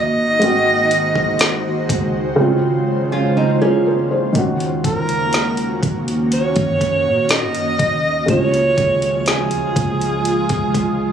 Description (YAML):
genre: contemporary R&B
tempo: 61 BPM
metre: 4/4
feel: straight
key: Eb dorian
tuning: A4 = 440 Hz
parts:
  - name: warm alto saxophone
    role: melody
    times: 0.0-11.1 s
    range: Ab4 to Eb5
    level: -18 LUFS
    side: right 1 dB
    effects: ping-pong delay
  - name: felt-muted upright piano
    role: accompaniment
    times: 0.0-11.1 s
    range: Ab2 to C5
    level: -20 LUFS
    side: equal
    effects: none
  - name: ethereal airy pad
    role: sustained chords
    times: 0.0-11.1 s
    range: Db3 to C5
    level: -21 LUFS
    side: right 1 dB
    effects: ensemble chorus, built-in reverb
  - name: clean 808-style bass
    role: bass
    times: 0.0-11.1 s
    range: Ab1 to Bb2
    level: -27 LUFS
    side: equal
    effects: none
  - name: smooth R&B drum kit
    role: drums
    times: 0.4-11.0 s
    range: hi-hat, kick drum, snare drum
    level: -20 LUFS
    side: equal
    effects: none
  - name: nylon-string guitar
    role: arpeggios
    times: 3.1-4.3 s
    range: Bb3 to F4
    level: -21 LUFS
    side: right 3 dB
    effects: ping-pong delay
room: little or no reverb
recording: recorded on a phone in the room, club reverb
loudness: -15 LUFS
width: side -8 dB against mid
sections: 0.0-4.4 A section; 4.4-11.1 B section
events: drums muted 2.4-4.4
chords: 0.4 Ab7; 2.4 Dbmaj7; 4.4 Ebm7; 8.3 Dbmaj7